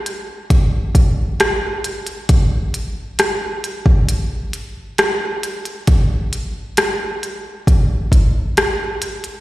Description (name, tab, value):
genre	pop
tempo	67 BPM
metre	4/4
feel	straight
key	none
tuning	none
part	minimal click drum kit	drums	0.1-9.4 s	hi-hat, kick drum, rim click	-15 LUFS	equal	overdrive
room	moderate plate reverb, RT60 2.9 s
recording	live gig heard through the venue's PA, recital hall reverb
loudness	-15 LUFS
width	side -17 dB against mid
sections	0.0-9.4 A section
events	none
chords	none